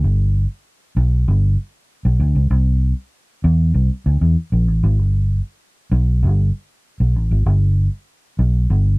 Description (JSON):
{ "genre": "funk", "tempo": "97 BPM", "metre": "4/4", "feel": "straight", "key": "unclear", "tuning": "A4 = 436 Hz", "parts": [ { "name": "vintage muted fingered electric bass", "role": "solo", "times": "0.0-9.0 s", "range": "G1 to E2", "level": "-14 LUFS", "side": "equal", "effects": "none" } ], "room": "light reverb", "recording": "dry, close 1970s-style studio recording", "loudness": "-15 LUFS", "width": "side -28 dB against mid", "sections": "0.0-9.0 A section", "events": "none", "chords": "none", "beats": "| 0.03 0.65 1.27 1.89 | 2.51 3.13 3.75 4.37 | 4.98 5.60 6.22 6.84 | 7.46 8.07 8.69" }